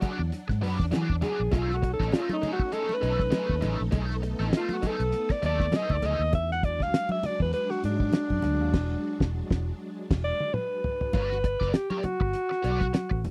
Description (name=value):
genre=funk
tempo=100 BPM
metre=4/4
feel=swing 56% on 16ths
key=unclear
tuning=A4 = 440 Hz
part: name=breathy alto saxophone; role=melody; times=0.0-13.2 s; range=D4 to F#5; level=-31 LUFS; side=equal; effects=none
part: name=biting overdriven guitar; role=accompaniment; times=0.0-6.2, 11.1-13.1 s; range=A3 to D5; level=-38 LUFS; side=equal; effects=wah
part: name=string machine, violins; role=sustained chords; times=0.0-11.1 s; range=F#3 to D#4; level=-40 LUFS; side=equal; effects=ensemble chorus
part: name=vintage muted fingered electric bass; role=bass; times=0.0-13.3 s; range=E1 to E3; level=-32 LUFS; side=equal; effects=none
part: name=cloth-damped thuddy drum kit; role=drums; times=0.0-13.3 s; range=crash cymbal, hi-hat, kick drum, snare drum, toms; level=-30 LUFS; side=equal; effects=none
part: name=congas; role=percussion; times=0.0-13.3 s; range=none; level=-38 LUFS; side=equal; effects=none
room=little or no reverb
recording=dry, close 1970s-style studio recording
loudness=-27 LUFS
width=mono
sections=0.0-11.1 A section; 11.1-13.3 B section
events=alto saxophone solo 0.0-11.1; band accent 8.7-11.1; drum fill 9.9-11.1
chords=0.0 E9; 1.5 B13; 6.3 E9; 11.1 Gmaj7